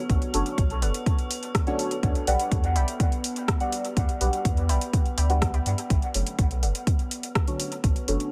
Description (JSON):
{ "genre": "dub techno", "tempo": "124 BPM", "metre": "4/4", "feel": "straight", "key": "B minor", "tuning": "A4 = 440 Hz", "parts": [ { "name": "metallic inharmonic drone", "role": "texture", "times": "0.0-8.3 s", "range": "B3", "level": "-40 LUFS", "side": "equal", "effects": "chorus, built-in reverb, sidechain pumping" }, { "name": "warm sub bass", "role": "bass", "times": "0.1-8.2 s", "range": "F#1 to G2", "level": "-28 LUFS", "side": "equal", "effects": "sidechain pumping" }, { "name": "deep house drum kit", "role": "drums", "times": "0.1-8.3 s", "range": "hi-hat, rim click", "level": "-34 LUFS", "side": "equal", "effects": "dub echo" }, { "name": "electronic kick drum", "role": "drums", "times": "0.1-7.9 s", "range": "none", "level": "-26 LUFS", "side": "equal", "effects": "none" }, { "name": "deep mellow chord stab", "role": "stabs", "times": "0.3-8.3 s", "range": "D4 to F#5", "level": "-32 LUFS", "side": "equal", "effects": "chorus, phaser, sidechain pumping, dub echo" }, { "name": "warbly dusty pluck", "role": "riff", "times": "0.8-6.7 s", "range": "A4 to B5", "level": "-41 LUFS", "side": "equal", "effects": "chorus, sidechain pumping, dub echo" } ], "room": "little or no reverb", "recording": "none", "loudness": "-25 LUFS", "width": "mono", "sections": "0.0-8.3 A section", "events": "none", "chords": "0.0 Bm7; 2.0 Em7; 5.9 Bm7" }